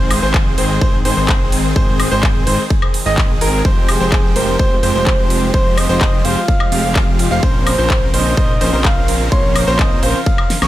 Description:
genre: EDM, festival progressive house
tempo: 127 BPM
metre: 4/4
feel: straight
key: F minor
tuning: A4 = 439 Hz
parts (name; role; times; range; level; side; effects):
- lush unison pad; sustained chords; 0.0-10.7 s; Db3 to G5; -26 LUFS; equal; chorus, phaser, sidechain pumping
- bright grand piano; arpeggios; 0.0-10.7 s; Bb4 to Db6; -22 LUFS; equal; sidechain pumping, tape echo
- supersaw chords; riff; 0.0-10.7 s; Eb3 to F5; -20 LUFS; right 1 dB; sidechain pumping, tape echo
- fat analog bass; bass; 0.0-10.7 s; F1 to Bb1; -20 LUFS; equal; sidechain pumping
- big-room dance drum kit; drums; 0.1-10.7 s; handclaps, hi-hat, ride cymbal, snare drum, woodblock; -22 LUFS; equal; studio ambience
- electronic kick drum; drums; 0.3-10.4 s; none; -15 LUFS; equal; studio ambience
- breathy flute-like synth lead; melody; 3.9-10.7 s; Ab4 to F5; -21 LUFS; equal; chorus, tape echo
room: digital ambience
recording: none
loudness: -12 LUFS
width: side -14 dB against mid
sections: 0.0-10.7 A section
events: drum fill 10.5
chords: 0.0 Ab; 3.6 Fmadd9; 7.4 Bbmadd9

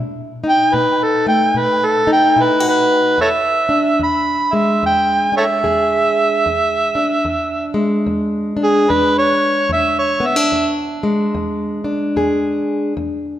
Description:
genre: acoustic country blues, solo or duo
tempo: 74 BPM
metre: 4/4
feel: swing 62% on 8ths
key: E mixolydian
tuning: A4 = 441 Hz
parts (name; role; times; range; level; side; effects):
- fingerpicked plugged-in steel-string acoustic guitar; accompaniment; 0.0-13.4 s; E2 to G#4; -18 LUFS; left 1 dB; none
- overdriven harmonica; melody; 0.5-10.7 s; G#4 to B5; -14 LUFS; right 1 dB; none
room: moderate concert hall reverb, RT60 2.0 s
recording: none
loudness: -14 LUFS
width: side -12 dB against mid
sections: 0.0-3.2 A section; 3.2-13.4 B section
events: harmonica solo 3.2-13.4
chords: 0.0 B7; 3.2 E7

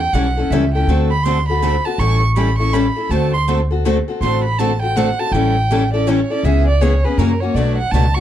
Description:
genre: acoustic string swing (jazz manouche)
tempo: 162 BPM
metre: 3/4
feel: swing 63% on 8ths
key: A mixolydian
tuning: A4 = 439 Hz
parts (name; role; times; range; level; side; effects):
- warm violin; second line; 0.0-8.2 s; A#4 to C#6; -21 LUFS; right 4 dB; none
- upright bass; bass; 0.0-8.2 s; A1 to F#2; -17 LUFS; equal; none
- picked steel-string acoustic guitar; accompaniment; 0.1-8.2 s; B2 to A4; -20 LUFS; left 5 dB; none
- picked steel-string acoustic guitar; accompaniment; 0.1-8.1 s; B2 to B4; -24 LUFS; right 8 dB; none
room: light reverb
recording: dark, warm production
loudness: -14 LUFS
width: side -11 dB against mid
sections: 0.0-8.2 A section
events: violin solo 0.0-8.2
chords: 0.0 A7; 0.9 D7; 2.0 A7; 3.1 D7; 5.3 A7; 6.4 C#m7; 7.2 F#7; 7.6 Bm7

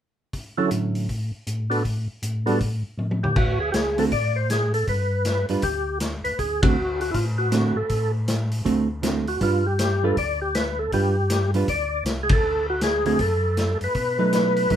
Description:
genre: soul jazz organ trio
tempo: 159 BPM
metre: 4/4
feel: swing 64% on 8ths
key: D major, D mixolydian from 3.4 s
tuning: A4 = 440 Hz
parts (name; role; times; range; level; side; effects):
- vintage drum kit; drums; 0.3-14.8 s; crash cymbal, hi-hat, kick drum, ride cymbal, snare drum, toms; -26 LUFS; left 1 dB; none
- percussive tonewheel organ; melody; 0.6-14.8 s; B3 to D5; -24 LUFS; equal; slow rotary speaker, overdrive, chorus vibrato
- hollow-body jazz guitar; accompaniment; 0.6-14.8 s; D3 to B4; -23 LUFS; right 4 dB; none
- mellow tonewheel organ; bass; 0.7-14.8 s; C2 to B2; -26 LUFS; left 1 dB; chorus vibrato
room: moderate studio reverb, RT60 0.5 s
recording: minimal, uncompressed stereo recording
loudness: -20 LUFS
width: side -10 dB against mid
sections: 0.3-3.4 A section; 3.4-14.8 B section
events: drum fill 3.0-3.4; band accent 6.6, 12.2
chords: 0.3 Dmaj9; 1.8 N.C.; 3.4 D; 4.9 G; 6.4 D7; 7.9 N.C.; 8.7 D7; 9.4 G7; 12.4 D; 13.9 B7

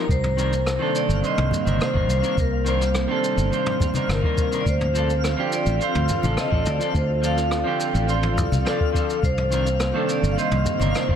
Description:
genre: sunset chillout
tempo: 105 BPM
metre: 4/4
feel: straight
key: C dorian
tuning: A4 = 441 Hz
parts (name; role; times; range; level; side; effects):
- vibraphone with medium hard mallets; melody; 0.0-11.2 s; A4 to F5; -26 LUFS; equal; digital delay
- clean electric guitar; accompaniment; 0.0-11.2 s; D3 to D5; -27 LUFS; moving between left 4 dB and right 5 dB; auto-pan, digital delay
- airy breathy pad; sustained chords; 0.0-11.2 s; C3 to D5; -28 LUFS; equal; chorus
- twinkling granular texture; texture; 0.1-11.2 s; F5; -35 LUFS; left 1 dB; built-in reverb
- fingered electric bass; bass; 0.1-11.2 s; G1 to D2; -23 LUFS; equal; none
- electronic kick drum; drums; 0.1-11.2 s; none; -24 LUFS; equal; none
- vintage brush drum kit; drums; 0.1-11.1 s; rim click, shaker, toms; -31 LUFS; equal; none
- congas; percussion; 1.5-10.9 s; none; -28 LUFS; left 2 dB; none
room: light reverb, small room ambience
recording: none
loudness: -19 LUFS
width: side -8 dB against mid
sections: 0.1-11.2 A section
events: none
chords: 0.1 Cm9; 4.7 Dm7; 9.2 Cm9

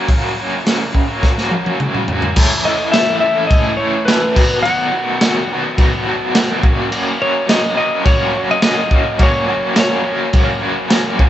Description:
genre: garage rock duo or trio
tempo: 105 BPM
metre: 4/4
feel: straight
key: F# major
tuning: A4 = 441 Hz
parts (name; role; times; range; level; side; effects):
- clean lap steel guitar; melody; 0.0-10.9 s; B4 to F#5; -18 LUFS; left 1 dB; none
- raw garage guitar; riff; 0.0-11.3 s; F#2 to A4; -18 LUFS; equal; overdrive, tremolo
- crunchy breakbeat drum kit; drums; 0.1-11.3 s; crash cymbal, hi-hat, kick drum, snare drum, toms; -16 LUFS; equal; none
room: light reverb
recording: band playing live in one room, nothing above 8.0 kHz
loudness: -13 LUFS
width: side -12 dB against mid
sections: 0.0-2.4 A section; 2.4-11.3 B section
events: drum fill 1.2-2.4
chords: 0.0 F#; 2.4 A; 4.4 B; 6.6 F#

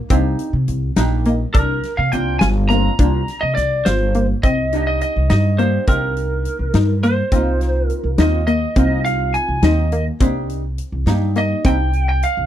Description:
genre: progressive instrumental, band music in an uneven meter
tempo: 208 BPM (eighths)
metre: 5/8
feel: straight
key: C minor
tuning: A4 = 442 Hz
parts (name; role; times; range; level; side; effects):
- archtop guitar, miked and amplified; accompaniment; 0.1-11.9 s; Bb3 to G5; -24 LUFS; right 1 dB; double-tracked left and right
- analog pluck; arpeggios; 0.1-12.0 s; Bb3 to F4; -22 LUFS; left 3 dB; chorus
- upright bass; bass; 0.1-12.5 s; G1 to C3; -18 LUFS; equal; none
- huge arena drum kit; drums; 0.1-12.4 s; hi-hat, kick drum, snare drum; -20 LUFS; equal; none
- lightly driven lead guitar; melody; 1.5-12.5 s; Bb4 to Bb5; -21 LUFS; right 2 dB; none
room: small room ambience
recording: dry, close 1970s-style studio recording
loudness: -15 LUFS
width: side -11 dB against mid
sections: 0.0-4.4 A section; 4.4-12.5 B section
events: hollow-body jazz guitar fill 0.7-1.5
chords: 0.0 Cm7; 1.5 Bbadd9; 4.4 Cm7; 7.3 Ab69/C (rootless); 10.2 Cm7

